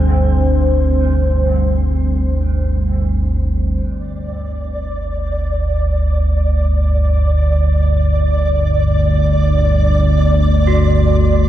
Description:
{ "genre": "dark ambient drone", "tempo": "free time", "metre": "none", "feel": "none", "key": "unclear", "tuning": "A4 = 441 Hz", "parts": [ { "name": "dark analog pad", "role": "sustained chords", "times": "0.0-3.8, 11.1-11.5 s", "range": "G3 to C5", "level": "-23 LUFS", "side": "equal", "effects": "chorus, shimmer reverb" }, { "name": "gamelan-type bronze metallophone", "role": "arpeggios", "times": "0.0-4.3, 10.7-11.5 s", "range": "D3 to F#4", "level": "-26 LUFS", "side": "equal", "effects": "diffuse ambient delay, shimmer reverb" }, { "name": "deep rumbling drone", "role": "drone", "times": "0.0-11.5 s", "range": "G1 to D2", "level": "-14 LUFS", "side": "equal", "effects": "built-in reverb, lush chorus" }, { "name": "flickering grainy texture", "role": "texture", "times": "4.3-11.5 s", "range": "D5", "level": "-21 LUFS", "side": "right 1 dB", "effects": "built-in reverb, shimmer reverb" } ], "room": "moderate huge ambient reverb, RT60 8.7 s", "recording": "dark, warm production", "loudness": "-13 LUFS", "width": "side -12 dB against mid", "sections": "0.0-3.8 A section; 3.8-11.5 B section", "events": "none", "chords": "0.0 C5/G; 3.8 G5" }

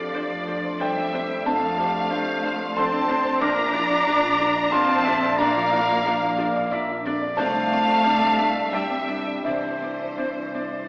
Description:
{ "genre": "cinematic, emotional film score for orchestra", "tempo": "90 BPM", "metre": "3/4", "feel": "rubato", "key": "unclear", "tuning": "A4 = 443 Hz", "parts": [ { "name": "rich studio violin section", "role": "melody", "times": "0.0-10.9 s", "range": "C5 to Bb5", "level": "-30 LUFS", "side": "equal", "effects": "none" }, { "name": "concert flute", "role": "second line", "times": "0.0-10.9 s", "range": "E5 to D6", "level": "-26 LUFS", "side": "equal", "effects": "none" }, { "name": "mellow clarinet", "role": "second line", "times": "0.0-10.9 s", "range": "A4 to F5", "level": "-29 LUFS", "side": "equal", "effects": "none" }, { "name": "rich studio violin section", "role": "second line", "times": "0.0-10.9 s", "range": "C5 to Bb5", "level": "-30 LUFS", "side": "equal", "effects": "none" }, { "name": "dark baby grand piano", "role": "accompaniment", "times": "0.0-10.9 s", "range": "Bb1 to D6", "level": "-27 LUFS", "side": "equal", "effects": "none" }, { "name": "mellow French horn section", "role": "sustained chords", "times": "0.0-10.9 s", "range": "G3 to D4", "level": "-32 LUFS", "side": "equal", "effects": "none" }, { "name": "concert harp", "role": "arpeggios", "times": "0.0-10.9 s", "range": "Bb2 to D6", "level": "-38 LUFS", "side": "left 1 dB", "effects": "none" }, { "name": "clear studio cello section", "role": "bass", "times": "0.0-10.9 s", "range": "E3 to D4", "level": "-27 LUFS", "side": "equal", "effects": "none" }, { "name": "rich studio double bass section", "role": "bass", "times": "0.0-10.8 s", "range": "Bb1 to F2", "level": "-38 LUFS", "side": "equal", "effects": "none" }, { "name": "rich studio viola section", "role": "accompaniment", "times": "0.1-10.6 s", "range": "D4 to D5", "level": "-34 LUFS", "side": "equal", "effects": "none" } ], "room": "wet scoring stage reverb, RT60 1.6 s", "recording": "heard from further back in the room, AM radio sound", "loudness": "-20 LUFS", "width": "side -27 dB against mid", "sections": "0.0-10.9 A section", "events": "none", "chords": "0.0 F6; 3.4 Bb; 7.4 Cadd9" }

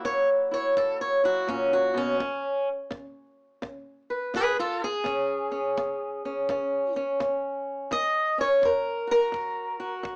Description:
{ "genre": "acoustic country blues, solo or duo", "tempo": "84 BPM", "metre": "4/4", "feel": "swing 64% on 8ths", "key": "F# mixolydian", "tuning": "A4 = 440 Hz", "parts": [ { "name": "fingerpicked swing-style acoustic guitar", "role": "melody", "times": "0.0-10.2 s", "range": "F#2 to D#5", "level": "-27 LUFS", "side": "equal", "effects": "none" }, { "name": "kick drum", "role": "drums", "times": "0.0-10.2 s", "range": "none", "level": "-49 LUFS", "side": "equal", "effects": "none" } ], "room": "light reverb", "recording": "small speaker sound", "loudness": "-27 LUFS", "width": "mono", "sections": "0.0-10.2 A section", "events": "steel-string acoustic guitar solo 0.0-10.2", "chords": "0.0 F#7; 2.2 C#5; 7.9 F#" }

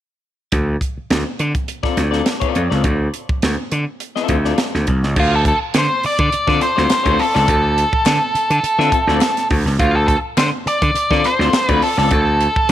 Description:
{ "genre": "funk", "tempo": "104 BPM", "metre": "4/4", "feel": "straight", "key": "D minor", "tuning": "A4 = 440 Hz", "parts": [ { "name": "gritty slap bass", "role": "bass", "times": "0.5-12.7 s", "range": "C2 to D3", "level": "-17 LUFS", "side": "equal", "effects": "overdrive" }, { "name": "crisp fusion drum kit", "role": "drums", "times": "0.5-12.7 s", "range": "crash cymbal, hi-hat, kick drum, snare drum", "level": "-20 LUFS", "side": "right 1 dB", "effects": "none" }, { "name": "electric guitar at the edge of break-up", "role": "accompaniment", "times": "1.8-12.1 s", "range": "C4 to E5", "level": "-22 LUFS", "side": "left 10 dB", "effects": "spring reverb" }, { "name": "octave-fuzz lead guitar", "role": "melody", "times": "5.2-12.7 s", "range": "F4 to D5", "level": "-17 LUFS", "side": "equal", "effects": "distortion" }, { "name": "group handclap", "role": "percussion", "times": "5.8-11.7 s", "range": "none", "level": "-29 LUFS", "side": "left 14 dB", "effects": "none" } ], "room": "moderate echo chamber reverb, RT60 1.8 s, small room ambience", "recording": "1960s-style stereo", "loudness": "-14 LUFS", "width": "side -12 dB against mid", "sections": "0.5-5.2 A section; 5.2-12.7 B section", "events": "none", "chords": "0.5 Dm7" }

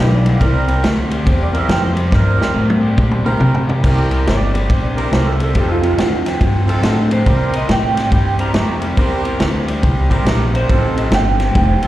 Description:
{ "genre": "electric blues shuffle", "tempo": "140 BPM", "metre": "4/4", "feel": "swing 64% on 8ths", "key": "C mixolydian", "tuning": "A4 = 440 Hz", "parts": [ { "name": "clean lap steel guitar", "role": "melody", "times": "0.0-11.9 s", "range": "F4 to C6", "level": "-22 LUFS", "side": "right 4 dB", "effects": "slapback echo" }, { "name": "overdriven electric guitar", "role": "riff", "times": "0.0-11.9 s", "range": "F2 to A3", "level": "-22 LUFS", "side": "left 2 dB", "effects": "slapback echo" }, { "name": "clear horn section", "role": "stabs", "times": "0.0-11.9 s", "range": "B3 to Bb4", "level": "-22 LUFS", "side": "right 3 dB", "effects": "slapback echo" }, { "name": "upright bass", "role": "bass", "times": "0.0-11.8 s", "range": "F1 to C3", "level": "-16 LUFS", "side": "equal", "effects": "none" }, { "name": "vintage drum kit", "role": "drums", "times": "0.3-11.9 s", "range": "crash cymbal, kick drum, ride cymbal, snare drum, toms", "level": "-18 LUFS", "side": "equal", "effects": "none" } ], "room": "light reverb", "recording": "live gig heard through the venue's PA, recital hall reverb", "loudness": "-13 LUFS", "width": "side -14 dB against mid", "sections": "0.0-3.8 A section; 3.8-11.9 A section", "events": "drum fill 2.1-3.8; electric slide guitar solo 3.8-11.9", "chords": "0.4 C7; 5.5 F7; 7.3 C7; 10.7 F7" }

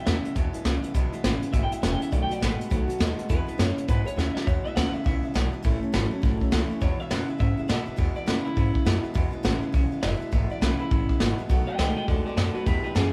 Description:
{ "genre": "rockabilly", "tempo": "205 BPM", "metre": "4/4", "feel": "swing 62% on 8ths", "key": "E major", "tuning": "A4 = 442 Hz", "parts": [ { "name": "electric guitar through a small old amp", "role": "melody", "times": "0.0-13.1 s", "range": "E4 to G5", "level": "-36 LUFS", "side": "equal", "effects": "spring reverb" }, { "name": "picked steel-string acoustic guitar", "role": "accompaniment", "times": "0.0-13.1 s", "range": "E2 to F#4", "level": "-36 LUFS", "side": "equal", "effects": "none" }, { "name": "electric guitar through a small old amp", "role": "riff", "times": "0.0-13.1 s", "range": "E2 to G#3", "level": "-34 LUFS", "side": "equal", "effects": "none" }, { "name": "upright bass", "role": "bass", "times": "0.1-13.1 s", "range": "E1 to B2", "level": "-30 LUFS", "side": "equal", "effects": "none" }, { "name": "vintage brush drum kit", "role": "drums", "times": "0.1-13.0 s", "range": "hi-hat, kick drum, snare drum", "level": "-29 LUFS", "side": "equal", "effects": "none" } ], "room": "moderate studio ambience, RT60 0.5 s", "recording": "band playing live in one room", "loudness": "-25 LUFS", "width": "mono", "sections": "0.0-4.5 A section; 4.5-13.1 B section", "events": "drum fill 4.2", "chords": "0.0 E; 2.1 B7; 3.3 E; 5.6 A; 6.8 E; 11.5 B7" }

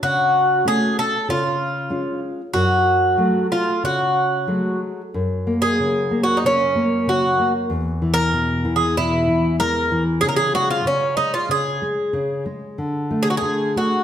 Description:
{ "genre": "fado-style ballad", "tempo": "94 BPM", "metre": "4/4", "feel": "rubato", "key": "F# harmonic minor", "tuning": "A4 = 440 Hz", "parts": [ { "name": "Irish bouzouki", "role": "melody", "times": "0.0-14.0 s", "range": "C#4 to A#4", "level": "-18 LUFS", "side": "equal", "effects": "none" }, { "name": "nylon-string guitar", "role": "accompaniment", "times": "0.0-14.0 s", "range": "E2 to F#4", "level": "-22 LUFS", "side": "left 1 dB", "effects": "none" } ], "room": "wet recital hall reverb, RT60 1.3 s", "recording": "none", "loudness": "-17 LUFS", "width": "side -9 dB against mid", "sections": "0.0-5.1 A section; 5.1-14.0 B section", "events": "none", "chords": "0.0 F#m/C#; 1.3 C#; 2.5 F#madd9; 5.1 F#; 7.7 E5; 10.2 C#5; 12.8 D5" }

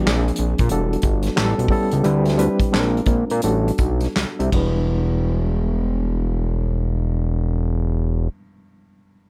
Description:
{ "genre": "R&B, neo-soul", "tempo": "79-92 BPM", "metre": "4/4", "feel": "swing 63% on 16ths", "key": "E minor", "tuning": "A4 = 440 Hz", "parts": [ { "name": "barky reed electric piano", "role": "accompaniment", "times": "0.0-9.3 s", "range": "E#3 to E5", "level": "-26 LUFS", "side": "equal", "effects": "overdrive, fast tremolo, plate reverb" }, { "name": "fat analog bass", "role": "bass", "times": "0.1-8.3 s", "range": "E1 to A#2", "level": "-22 LUFS", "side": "equal", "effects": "none" }, { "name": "unplugged drum kit", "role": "drums", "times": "0.1-4.7 s", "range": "handclaps, hi-hat, kick drum, ride cymbal, snare drum", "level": "-25 LUFS", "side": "equal", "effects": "none" } ], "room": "light reverb", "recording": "none", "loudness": "-20 LUFS", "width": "mono", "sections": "0.0-4.9 A section; 4.9-7.9 B section", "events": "slowing down 0.0-4.9", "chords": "0.1 A#9; 0.7 A13sus4/E; 1.4 A9; 2.0 D13sus4; 2.7 A#9; 3.4 A13sus4; 4.5 Em7" }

